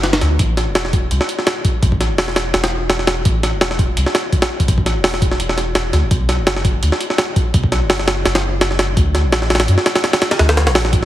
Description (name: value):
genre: drum and bass, jungle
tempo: 168 BPM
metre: 4/4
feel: swing 54% on 16ths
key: A dorian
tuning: A4 = 442 Hz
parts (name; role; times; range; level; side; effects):
- soft dub sub bass; bass; 0.0-11.1 s; E1 to F#2; -18 LUFS; equal; none
- jungle sampler-style drum kit; drums; 0.0-11.1 s; hi-hat, kick drum, snare drum; -15 LUFS; equal; none
room: light reverb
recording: heavily compressed radio sound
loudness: -14 LUFS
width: side -13 dB against mid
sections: 0.0-11.1 A section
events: none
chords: none